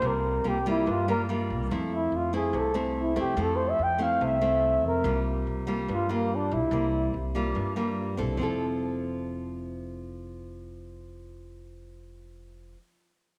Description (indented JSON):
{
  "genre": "bossa nova",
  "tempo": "144 BPM",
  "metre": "4/4",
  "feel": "straight",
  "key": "F major",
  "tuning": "A4 = 436 Hz",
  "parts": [
    { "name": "breathy flugelhorn", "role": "melody", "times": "0.0-7.1 s", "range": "Bb3 to G5", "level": "-30 LUFS", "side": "equal", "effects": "none" },
    { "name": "nylon-string guitar", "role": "accompaniment", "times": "0.0-12.8 s", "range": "G2 to A4", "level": "-33 LUFS", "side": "equal", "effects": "none" },
    { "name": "upright bass", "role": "bass", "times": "0.0-12.7 s", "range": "F1 to G2", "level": "-36 LUFS", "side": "equal", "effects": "none" }
  ],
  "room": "wet echo chamber reverb, RT60 2.2 s",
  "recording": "none",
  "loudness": "-28 LUFS",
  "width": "mono",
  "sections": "0.0-8.4 A section; 8.4-11.7 B section",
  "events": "flugelhorn solo 0.0-8.4",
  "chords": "0.0 C7sus4; 1.7 Fmaj7; 5.0 C7sus4; 8.4 Fmaj7"
}